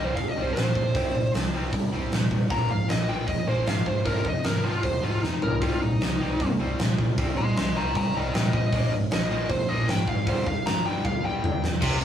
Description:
hard rock; 154 BPM; 4/4; straight; C minor; A4 = 440 Hz
high-gain lead guitar; melody; 0.0-11.6 s; Eb4 to C6; -28 LUFS; left 1 dB; distortion
cranked stack guitar; riff; 0.0-12.0 s; F2 to C4; -30 LUFS; equal; overdrive
overdriven picked electric bass; bass; 0.0-12.0 s; F1 to Bb2; -29 LUFS; equal
huge arena drum kit; drums; 0.2-12.0 s; crash cymbal, hi-hat, kick drum, snare drum, toms; -27 LUFS; equal
high-gain distorted guitar; riff; 11.8-12.0 s; C3; -26 LUFS; equal; distortion
moderate small room reverb, RT60 0.6 s; rough rehearsal-room recording, tube saturation, small room ambience; -23 LUFS; side -9 dB against mid
0.0-11.8 A section
lead electric guitar solo 0.0-11.8; drum fill 5.2-5.6, 11.0-11.8
0.0 C5; 2.5 Bb5; 4.1 Fm/Ab; 5.6 Cm; 8.7 Bbsus4; 10.3 G5

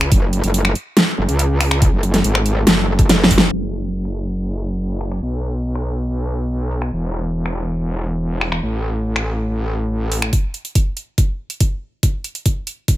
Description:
heavy wobble dubstep; 141 BPM; 4/4; half-time; F# minor; A4 = 440 Hz
metallic wobble bass; bass; 0.0-10.3 s; E1 to C#2; -19 LUFS; equal; distortion, chorus, overdrive
dubstep drum kit; drums; 0.0-13.0 s; crash cymbal, finger snaps, hi-hat, snare drum; -17 LUFS; equal; overdrive
electronic kick drum; drums; 0.1-3.4, 10.3-13.0 s; -16 LUFS; equal; overdrive
little or no reverb; low-pass filter; -16 LUFS; side -15 dB against mid
0.0-3.5 A section; 3.5-10.3 B section; 10.3-13.0 C section
drop 0.0-3.5; drum fill 3.1-3.5; band accent 3.4; filter sweep 3.5-10.3; build-up 10.3-13.0

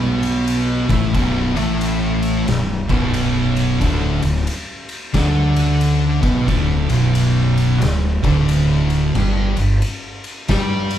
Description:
stoner and doom metal; 90 BPM; 4/4; swing 62% on 8ths; B minor; A4 = 438 Hz
thick fuzz guitar; riff; 0.0-11.0 s; B1 to G4; -20 LUFS; left 3 dB; distortion
thick fuzz guitar; riff; 0.0-11.0 s; B1 to G4; -20 LUFS; right 4 dB; distortion
fuzz fingered electric bass; bass; 0.0-11.0 s; B0 to G2; -22 LUFS; equal; overdrive
oversized low-tuned drum kit; drums; 0.2-11.0 s; crash cymbal, kick drum, ride cymbal, snare drum; -23 LUFS; equal
light reverb; band playing live in one room; -15 LUFS; side -10 dB against mid
0.0-11.0 A section
0.0 Asus2; 3.8 Bm; 9.2 G5

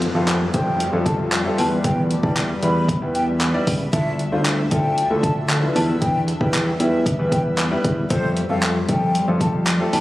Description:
dance-pop; 115 BPM; 4/4; straight; A4 = 440 Hz
warm grand piano; accompaniment; 0.0-10.0 s; G3 to D5; -26 LUFS; left 1 dB; sidechain pumping
shimmering ambient pad; sustained chords; 0.0-10.0 s; D3 to E5; -28 LUFS; left 1 dB; chorus, built-in reverb, sidechain pumping
fat analog bass; bass; 0.0-10.0 s; C#2 to F2; -22 LUFS; equal; sidechain pumping
deep house drum kit; drums; 0.0-10.0 s; handclaps, hi-hat, kick drum; -23 LUFS; equal
downlifter; sound effects; 0.0-3.9 s; -33 LUFS; left 1 dB
breathy mellow concert flute; melody; 0.1-10.0 s; C5 to B5; -26 LUFS; left 1 dB; sidechain pumping, ping-pong delay
light reverb, digital ambience; recorded on a phone in the room, club reverb; -17 LUFS; side -16 dB against mid
0.0-10.0 A section
0.0 Fadd9; 1.6 Em; 3.9 Dmadd9; 5.8 Em; 8.1 Fadd9

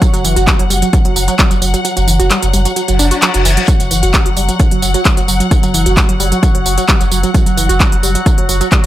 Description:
driving peak-time techno; 131 BPM; 4/4; straight; A4 = 440 Hz
tight sequenced synth; riff; 0.0-8.9 s; E3 to F#4; -18 LUFS; right 2 dB; chorus, sidechain pumping, digital delay
overtone-sweeping drone; drone; 0.0-8.9 s; F#3 to F#4; -23 LUFS; equal; chorus, built-in reverb, sidechain pumping
electronic kick drum; drums; 0.0-8.8 s; -12 LUFS; equal
techno drum kit; drums; 0.0-8.9 s; handclaps, hi-hat, tambourine; -16 LUFS; equal
rich studio string section; texture; 0.0-8.9 s; F#5; -22 LUFS; left 5 dB; sidechain pumping
saturated sub bass; bass; 0.1-8.9 s; F#1; -15 LUFS; equal; overdrive, sidechain pumping, low-pass filter
reverse cymbal; sound effects; 3.0-3.7 s; -21 LUFS; left 6 dB
digital ambience; -10 LUFS; side -14 dB against mid
0.0-8.9 A section
kick drops out 1.8-3.7; reverse cymbal 3.0-3.7

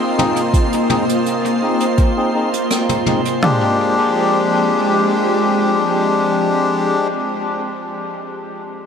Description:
ambient dub; 83 BPM; 4/4; straight; F dorian; A4 = 441 Hz
soft additive organ-like pad; sustained chords; 0.0-7.1 s; F3 to Eb5; -19 LUFS; right 1 dB; ensemble chorus, built-in reverb
drifting glass-harmonics texture; texture; 0.0-3.4 s; C6; -32 LUFS; right 3 dB; chorus, built-in reverb
melodica; stabs; 0.2-7.1 s; Ab3 to Ab4; -18 LUFS; left 3 dB; low-pass filter, dub echo
jazz brush drum kit; drums; 0.2-3.4 s; hi-hat, rim click, toms; -24 LUFS; left 1 dB; dub echo
organic electronic drum kit; drums; 0.5-3.6 s; kick drum, snare drum, toms; -16 LUFS; equal; overdrive
wet huge ambient reverb, RT60 7.3 s; -14 LUFS; side -7 dB against mid
0.0-3.4 A section; 3.4-6.3 B section
filter sweep on melodica 0.0-3.4
0.0 Bb9sus4; 3.4 Fm69

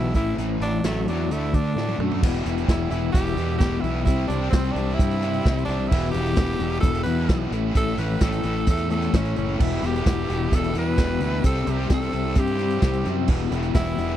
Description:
classic rock; 130 BPM; 4/4; straight; E minor; A4 = 440 Hz
raspy tenor saxophone; melody; 0.0-14.2 s; A3 to B4; -29 LUFS; right 1 dB
tonewheel organ; sustained chords; 0.0-2.2, 9.6-14.2 s; G3 to D5; -39 LUFS; right 1 dB
overdriven electric guitar; riff; 0.0-14.2 s; E2 to C4; -27 LUFS; left 11 dB; harmonic tremolo
overdriven semi-hollow guitar; riff; 0.0-14.2 s; E2 to E4; -31 LUFS; right 12 dB
fuzz fingered electric bass; bass; 0.0-14.2 s; E1 to D3; -26 LUFS; right 1 dB; overdrive
vintage drum kit; drums; 0.1-14.1 s; crash cymbal, hi-hat, kick drum, snare drum, toms; -22 LUFS; right 1 dB
little or no reverb; dry, close 1970s-style studio recording; -20 LUFS; side -11 dB against mid
0.0-2.2 A section; 2.2-14.2 B section
tenor saxophone solo 0.0-2.2; drum fill 1.8-2.2
0.1 Am; 1.3 D; 2.2 Em; 4.1 C; 5.9 Em; 7.5 A; 9.6 Em; 11.4 C; 13.3 Em

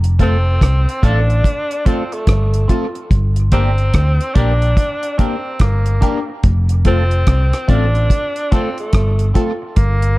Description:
roots reggae; 72 BPM; 4/4; swing 63% on 16ths; F major; A4 = 441 Hz
hollow-body short-scale fingered electric bass; bass; 0.0-10.2 s; F1 to D2; -14 LUFS; equal
deep reggae drum kit; drums; 0.0-10.2 s; hi-hat, kick drum, rim click; -15 LUFS; equal
bright tenor saxophone; melody; 0.2-10.2 s; A3 to D4; -22 LUFS; equal; tape echo
semi-hollow electric guitar; accompaniment; 0.2-9.7 s; C4 to Bb4; -27 LUFS; right 2 dB; phaser, tape echo
percussive organ stab; stabs; 0.2-9.5 s; A3 to Bb4; -25 LUFS; left 3 dB; chorus, phaser
light reverb, studio ambience; dark, warm production; -13 LUFS; side -19 dB against mid
0.0-10.2 A section
0.0 F; 3.1 Gm; 6.4 F

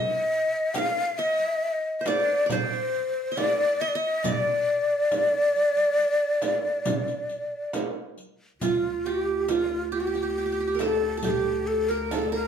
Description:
Arabic maqam ensemble; 137 BPM (eighths); 10/8; straight; D maqam bayati; A4 = 437 Hz
breathy mellow ney; melody; 0.0-12.5 s; F4 to G5; -24 LUFS; left 1 dB
qanun; second line; 0.0-12.5 s; F4 to F5; -30 LUFS; right 5 dB
riq; percussion; 0.7-12.3 s; -36 LUFS; left 4 dB
frame drum; percussion; 0.8-12.3 s; -32 LUFS; right 4 dB
dark double bass; drone; 8.6-12.5 s; D2; -36 LUFS; left 1 dB
wet studio reverb, RT60 0.7 s; band playing live in one room; -23 LUFS; side -7 dB against mid
0.0-8.6 A section; 8.6-12.5 B section

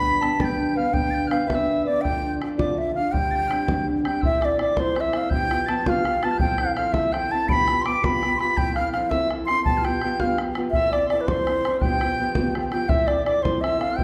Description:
celtic folk, Celtic jig; 110 BPM (dotted quarters); 6/8; straight; G mixolydian; A4 = 440 Hz
bright reedy baroque flute; melody; 0.0-14.0 s; B4 to D6; -26 LUFS; equal
tin whistle; second line; 0.0-14.0 s; C6 to D7; -32 LUFS; equal
fingerpicked steel-string acoustic guitar; accompaniment; 0.0-14.0 s; G2 to B4; -29 LUFS; equal
bodhran; percussion; 0.2-14.0 s; -30 LUFS; equal
wet recital hall reverb, RT60 1.8 s; recorded in a church or concert hall; -23 LUFS; mono
0.0-4.2 A section; 4.2-12.9 B section; 12.9-14.0 B section
0.0 G; 2.0 Dm; 3.1 Gsus4; 4.2 Fmaj7; 5.3 G7; 6.4 Fmaj7; 7.5 G7; 8.6 Fmaj7; 9.7 G7; 10.7 Fmaj7; 11.8 G7; 12.9 Fmaj7

